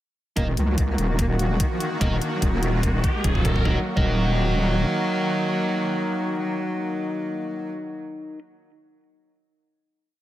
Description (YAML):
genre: heavy wobble dubstep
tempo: 146 BPM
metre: 4/4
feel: half-time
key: Eb minor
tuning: A4 = 440 Hz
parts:
  - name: clear cello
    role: melody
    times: 0.4-7.7 s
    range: Eb3 to Bb3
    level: -28 LUFS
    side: right 1 dB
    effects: tape echo
  - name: supersaw pad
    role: sustained chords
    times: 0.4-7.7 s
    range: Eb3 to Gb4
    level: -30 LUFS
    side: equal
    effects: sidechain pumping
  - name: sludgy distorted guitar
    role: stabs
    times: 0.4-8.4 s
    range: Eb4 to Eb5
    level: -30 LUFS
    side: left 1 dB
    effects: overdrive, tape echo
  - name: wobble bass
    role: bass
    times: 0.4-4.8 s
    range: Eb1 to Db2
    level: -23 LUFS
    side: equal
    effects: chorus, overdrive
  - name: electronic hi-hat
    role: drums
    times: 0.4-3.5 s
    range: none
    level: -32 LUFS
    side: left 3 dB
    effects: overdrive
  - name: electronic kick drum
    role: drums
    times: 0.4-4.1 s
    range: none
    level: -24 LUFS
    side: equal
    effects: none
  - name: riser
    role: sound effects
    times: 1.7-3.7 s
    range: none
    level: -33 LUFS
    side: right 1 dB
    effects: none
room: digital ambience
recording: none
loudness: -21 LUFS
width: side -14 dB against mid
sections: 0.4-3.7 build; 3.7-6.9 final chord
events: build-up 0.4-3.7; riser 1.7-3.7; drum fill 2.0-3.7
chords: 0.4 Ebm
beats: | 0.37 0.78 1.19 1.60 | 2.01 2.42 2.83 3.24 | 3.65 4.07 4.48 4.89 | 5.30 5.71 6.12 6.53